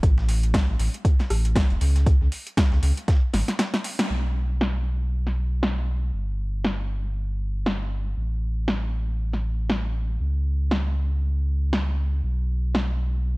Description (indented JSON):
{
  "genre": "deep house",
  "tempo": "118 BPM",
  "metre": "4/4",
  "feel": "swing 58% on 16ths",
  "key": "unclear",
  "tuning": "A4 = 442 Hz",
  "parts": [
    { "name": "sub bass with octave", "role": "bass", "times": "0.0-13.4 s", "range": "E1 to C#2", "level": "-23 LUFS", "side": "equal", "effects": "sidechain pumping" },
    { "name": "deep house drum kit", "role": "drums", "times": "0.0-12.9 s", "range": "hi-hat, rim click, snare drum", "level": "-27 LUFS", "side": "equal", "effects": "overdrive, low-pass filter on hats, low-pass filter on snare" },
    { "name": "dusty soul sampler-style drum kit", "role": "drums", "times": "0.0-4.0 s", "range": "hi-hat, snare drum", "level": "-39 LUFS", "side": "equal", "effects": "overdrive, high-pass filter on hats, high-pass filter on snare, tape echo" },
    { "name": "electronic kick drum", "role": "drums", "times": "0.0-3.2 s", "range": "none", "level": "-20 LUFS", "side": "equal", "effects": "none" }
  ],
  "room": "little or no reverb",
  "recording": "echo-heavy mix",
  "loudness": "-22 LUFS",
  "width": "side -24 dB against mid",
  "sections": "0.0-4.1 A section; 4.1-13.4 B section",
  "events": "drum fill 3.3-4.1; break 3.6-4.1; band accent 4.0",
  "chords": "none"
}